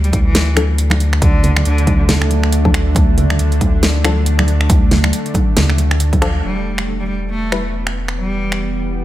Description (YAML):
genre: deep dubstep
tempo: 138 BPM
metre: 4/4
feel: swing 59% on 16ths, half-time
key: unclear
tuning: A4 = 440 Hz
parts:
  - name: clear cello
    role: melody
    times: 0.0-2.0, 6.4-8.8 s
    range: D3 to A3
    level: -24 LUFS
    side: equal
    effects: dub echo
  - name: bowed-like drone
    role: sustained chords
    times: 0.5-9.0 s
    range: D3 to G4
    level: -23 LUFS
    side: right 1 dB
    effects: built-in reverb
  - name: soft dub sub bass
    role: bass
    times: 0.0-9.0 s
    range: E1 to D2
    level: -16 LUFS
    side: equal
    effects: none
  - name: dubstep drum kit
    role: drums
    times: 0.0-8.6 s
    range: finger snaps, hi-hat, snare drum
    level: -20 LUFS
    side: equal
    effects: none
  - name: electronic kick drum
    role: drums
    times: 0.1-6.2 s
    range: none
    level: -15 LUFS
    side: equal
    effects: none
  - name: congas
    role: percussion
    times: 0.1-6.2 s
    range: none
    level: -22 LUFS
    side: right 2 dB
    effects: dub echo
  - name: filtered dub chord stab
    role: stabs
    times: 0.6-7.6 s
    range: F3 to B4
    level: -23 LUFS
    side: left 4 dB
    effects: chorus, dub echo
room: light reverb, digital ambience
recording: none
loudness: -12 LUFS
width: side -14 dB against mid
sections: 0.0-6.4 A section; 6.4-9.0 B section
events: filter sweep on synth stab 0.0-6.4; band accent 6.2; filter sweep on synth drone 6.4-9.0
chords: 0.0 D5; 6.4 Em